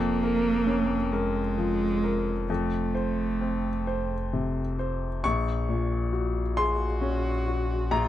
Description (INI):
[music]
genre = neoclassical piano and strings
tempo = 44 BPM (dotted quarters)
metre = 6/8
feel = rubato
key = unclear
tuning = A4 = 441 Hz
[part]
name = muted cello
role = second line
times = 0.0-8.1 s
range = Ab3 to Gb4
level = -29 LUFS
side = right 4 dB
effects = none
[part]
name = clear upright piano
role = accompaniment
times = 0.0-8.1 s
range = Bb1 to Db6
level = -28 LUFS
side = left 4 dB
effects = none
[part]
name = sub bass with octave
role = bass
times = 0.0-8.1 s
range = F1 to Bb1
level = -31 LUFS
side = equal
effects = none
[sound]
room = little or no reverb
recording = dry, close 1970s-style studio recording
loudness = -25 LUFS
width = side -12 dB against mid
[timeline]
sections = 0.0-5.2 A section; 5.2-8.1 B section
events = none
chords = 0.0 Bbm7/F; 2.5 F; 5.2 Gbadd9/Bb